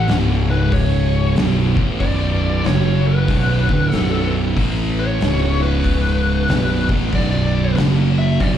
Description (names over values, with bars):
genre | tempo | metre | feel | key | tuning
stoner and doom metal | 94 BPM | 4/4 | swing 63% on 8ths | B minor | A4 = 440 Hz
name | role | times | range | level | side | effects
fuzz lead guitar | melody | 0.0-8.5 s | B4 to E5 | -24 LUFS | left 2 dB | distortion, slapback echo, tape echo
phased string machine | sustained chords | 0.0-8.6 s | F#3 to D5 | -32 LUFS | left 1 dB | ensemble chorus, phaser
thick fuzz guitar | riff | 0.0-8.6 s | B1 to A3 | -22 LUFS | left 6 dB | distortion, slapback echo
thick fuzz guitar | riff | 0.0-8.6 s | B1 to A3 | -20 LUFS | right 7 dB | distortion
fuzz picked electric bass | bass | 0.0-8.6 s | B0 to A1 | -20 LUFS | equal | overdrive
oversized low-tuned drum kit | drums | 0.1-8.6 s | hi-hat, kick drum, snare drum | -23 LUFS | left 1 dB | none
room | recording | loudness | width
little or no reverb | live gig heard through the venue's PA, club reverb | -15 LUFS | side -10 dB against mid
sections
0.0-8.6 A section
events
none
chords
0.1 C#5; 1.4 Bm; 2.7 F#5; 3.3 Bm; 4.6 A5; 5.2 C#5; 6.5 Bm; 7.8 F#5